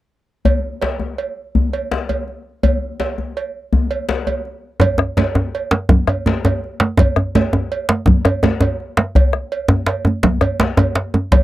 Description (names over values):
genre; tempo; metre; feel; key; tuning
west african traditional, West African drum ensemble; 110 BPM (dotted quarters); 12/8; straight; none; none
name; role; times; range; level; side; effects
cowbell; percussion; 0.5-11.4 s; none; -23 LUFS; right 6 dB; none
djembe; percussion; 0.5-11.4 s; none; -19 LUFS; left 2 dB; none
bombo; percussion; 4.8-11.4 s; none; -17 LUFS; left 1 dB; none
congas; percussion; 4.8-11.4 s; none; -19 LUFS; right 4 dB; none
djembe; percussion; 4.8-11.4 s; none; -16 LUFS; equal; none
room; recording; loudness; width
little or no reverb; dry, close 1970s-style studio recording; -15 LUFS; side -15 dB against mid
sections
0.4-4.8 A section; 4.8-11.4 B section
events
none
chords
none